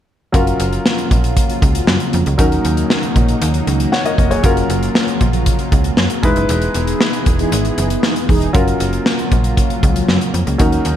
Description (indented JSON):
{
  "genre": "1980s-style pop",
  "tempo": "117 BPM",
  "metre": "4/4",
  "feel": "straight",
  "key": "F# major",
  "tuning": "A4 = 440 Hz",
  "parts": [
    { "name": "clear concert grand piano", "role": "accompaniment", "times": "0.3-11.0 s", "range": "F#3 to F#5", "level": "-20 LUFS", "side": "left 1 dB", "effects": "shimmer reverb" },
    { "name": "string machine, cellos", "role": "sustained chords", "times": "0.3-11.0 s", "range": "C#3 to G#4", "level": "-21 LUFS", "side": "equal", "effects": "ensemble chorus" },
    { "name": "slap-like FM bass", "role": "bass", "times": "0.3-11.0 s", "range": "E1 to F#2", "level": "-18 LUFS", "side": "equal", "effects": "none" },
    { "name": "modern studio drum kit", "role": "drums", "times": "0.3-11.0 s", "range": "hi-hat, kick drum, snare drum", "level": "-16 LUFS", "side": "equal", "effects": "gated reverb" },
    { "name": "mellow synth brass", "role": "stabs", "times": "7.4-8.5 s", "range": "E3 to G#4", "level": "-23 LUFS", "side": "right 3 dB", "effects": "chorus, digital delay, shimmer reverb" }
  ],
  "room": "moderate recital hall reverb, RT60 1.6 s, small room ambience",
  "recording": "none",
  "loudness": "-13 LUFS",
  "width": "side -10 dB against mid",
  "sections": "0.3-11.0 A section",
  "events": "band accent 6.5-8.5",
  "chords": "0.3 F#maj7; 2.4 D#m7; 4.4 F#maj7; 6.2 Emaj7; 8.5 F#maj7",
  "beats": "| 0.34 0.85 1.37 1.88 | 2.39 2.90 3.42 3.93 | 4.44 4.96 5.47 5.98 | 6.49 7.01 7.52 8.03 | 8.54 9.06 9.57 10.08 | 10.60"
}